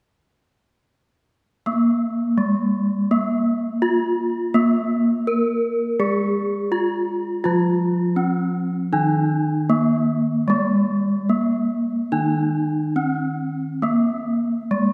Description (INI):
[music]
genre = gamelan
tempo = 68-83 BPM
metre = 4/4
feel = straight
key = Bb slendro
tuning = A4 = 440 Hz
[part]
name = gamelan-type bronze metallophone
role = melody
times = 1.7-14.9 s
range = Ab3-40c to Bb4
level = -22 LUFS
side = equal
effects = none
[part]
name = gamelan-type bronze metallophone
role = accompaniment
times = 1.7-14.9 s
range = Eb3-20c to Bb3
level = -26 LUFS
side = equal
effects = none
[sound]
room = wet concert hall reverb, RT60 2.0 s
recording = recorded in a church or concert hall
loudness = -21 LUFS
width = mono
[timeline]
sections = 1.7-13.8 A section; 13.8-14.9 B section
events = none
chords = none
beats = | 1.67 2.39 3.11 3.83 | 4.56 5.28 6.00 6.73 | 7.45 8.18 8.93 9.69 | 10.48 11.28 12.11 12.96 | 13.82 14.71